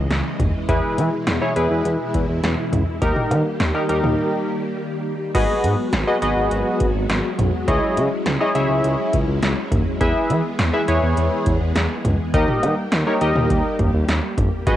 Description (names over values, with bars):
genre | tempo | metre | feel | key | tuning
synth-pop | 103 BPM | 4/4 | straight | G# minor | A4 = 436 Hz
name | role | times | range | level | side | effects
string machine, violas | sustained chords | 0.0-14.8 s | B2 to D#5 | -26 LUFS | equal | ensemble chorus, cassette tape
smooth gliding synth bass | bass | 0.0-14.8 s | G1 to E3 | -22 LUFS | equal | none
electro analog drum machine | drums | 0.1-14.8 s | cowbell, crash cymbal, hi-hat, kick drum, snare drum, toms | -22 LUFS | equal | none
warm analog keys | accompaniment | 0.7-14.8 s | D#4 to E5 | -20 LUFS | left 1 dB | chorus, cassette tape, plate reverb
room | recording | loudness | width
moderate booth ambience, RT60 0.2 s | home recording on cassette | -17 LUFS | side -12 dB against mid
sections
0.0-5.3 A section; 5.3-14.8 A section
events
break 4.2-5.3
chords
0.0 C#madd9; 0.7 E; 3.0 D#; 5.3 G#m7; 7.7 C#madd9; 10.0 E; 12.3 D#